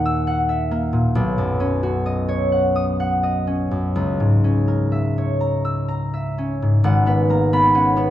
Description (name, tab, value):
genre	classical, solo harp piece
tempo	41-46 BPM (dotted quarters)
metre	6/8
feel	rubato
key	G# minor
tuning	A4 = 440 Hz
part	concert harp	solo	0.0-8.1 s	G#1 to E6	-17 LUFS	equal	none
room	wet recital hall reverb, RT60 1.4 s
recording	dark, warm production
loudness	-17 LUFS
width	side -12 dB against mid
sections	0.0-6.8 A section; 6.8-8.1 B section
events	none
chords	0.0 F#7/D#; 1.2 Badd9; 4.0 C#m6; 6.8 G#m9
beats	| 1.16 2.53 | 3.96 5.41 | 6.83